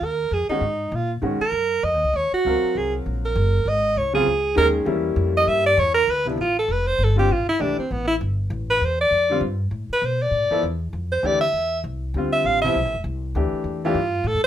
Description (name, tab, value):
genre	modal jazz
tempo	198 BPM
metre	4/4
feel	swing 60% on 8ths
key	D dorian from 6.1 s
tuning	A4 = 437 Hz
part	clear alto saxophone	melody	0.0-14.5 s	B3 to F5	-20 LUFS	right 1 dB	none
part	upright bass	bass	0.0-14.5 s	F1 to B2	-25 LUFS	equal	none
part	clear upright piano	accompaniment	0.5-14.0 s	C3 to F5	-24 LUFS	left 2 dB	none
room	light reverb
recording	minimal, uncompressed stereo recording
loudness	-19 LUFS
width	side -11 dB against mid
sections	0.0-6.1 A section; 6.1-14.5 A section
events	alto saxophone solo 0.0-14.5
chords	0.0 Bb7sus4; 1.2 Ab9sus4; 4.9 Edim7; 6.1 Dm9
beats	| 0.02 0.32 0.62 0.93 | 1.23 1.53 1.84 2.14 | 2.44 2.75 3.05 3.35 | 3.66 3.96 4.26 4.57 | 4.87 5.17 5.47 5.78 | 6.08 6.38 6.69 6.99 | 7.29 7.60 7.90 8.20 | 8.51 8.81 9.11 9.42 | 9.72 10.02 10.32 10.63 | 10.93 11.23 11.54 11.84 | 12.14 12.44 12.75 13.05 | 13.35 13.65 13.96 14.26